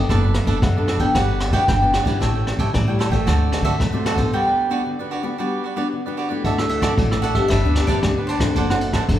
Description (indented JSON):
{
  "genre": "samba and choro",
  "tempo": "113 BPM",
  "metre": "4/4",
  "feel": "straight",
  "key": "G major",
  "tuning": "A4 = 440 Hz",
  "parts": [
    { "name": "cavaquinho", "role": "accompaniment", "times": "0.0-9.0 s", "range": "D4 to G5", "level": "-26 LUFS", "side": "right 4 dB", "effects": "none" },
    { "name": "nylon-string guitar", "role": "accompaniment", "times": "0.0-9.2 s", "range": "A2 to A4", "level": "-24 LUFS", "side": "left 3 dB", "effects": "none" },
    { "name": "upright bass", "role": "bass", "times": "0.0-9.2 s", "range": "F#1 to D3", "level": "-22 LUFS", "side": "equal", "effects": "none" },
    { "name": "jazz brush drum kit", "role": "drums", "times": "0.1-9.2 s", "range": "kick drum, ride cymbal, rim click", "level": "-21 LUFS", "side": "equal", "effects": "none" },
    { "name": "mandolin", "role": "melody", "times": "0.6-9.2 s", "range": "C5 to G5", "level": "-25 LUFS", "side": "equal", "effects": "none" }
  ],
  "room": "moderate recital hall reverb, RT60 1.5 s",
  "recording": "recorded in a church or concert hall",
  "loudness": "-17 LUFS",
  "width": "side -12 dB against mid",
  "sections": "0.0-6.4 A section; 6.4-9.2 B section",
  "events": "break 4.3-6.4",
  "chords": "0.1 Bm7/F#; 1.2 Gmaj7; 2.2 A7; 3.3 D7; 4.3 Gmaj7; 6.4 Dadd9; 7.5 G; 8.6 D7/F#"
}